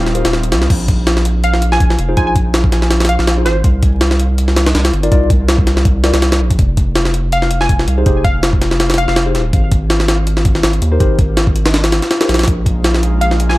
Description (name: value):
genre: drum and bass, jungle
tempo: 163 BPM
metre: 4/4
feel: swing 54% on 16ths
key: unclear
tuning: A4 = 441 Hz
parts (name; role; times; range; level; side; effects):
- airy breathy pad; sustained chords; 0.0-0.7, 12.5-13.6 s; G3 to F4; -25 LUFS; equal; chorus
- saturated sub bass; bass; 0.0-13.6 s; Eb1 to Eb2; -15 LUFS; equal; none
- mellow tine electric piano; stabs; 0.1-12.4 s; Eb4 to D5; -22 LUFS; left 1 dB; wide subtle chorus, dub echo
- jungle sampler-style drum kit; drums; 0.1-13.6 s; crash cymbal, hi-hat, kick drum, snare drum; -14 LUFS; equal; none
- glassy wavetable pluck; melody; 1.4-3.7, 7.3-9.1, 13.2-13.6 s; C5 to Ab5; -20 LUFS; equal; chorus, dub echo
room: digital ambience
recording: vinyl crackle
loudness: -11 LUFS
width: side -18 dB against mid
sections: 0.7-13.6 A section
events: drop 0.7-13.6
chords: 0.0 Eb69; 0.7 Bb7sus4; 3.6 C7(no3); 6.6 Fm9; 9.5 Abmaj9; 12.5 Bb7sus4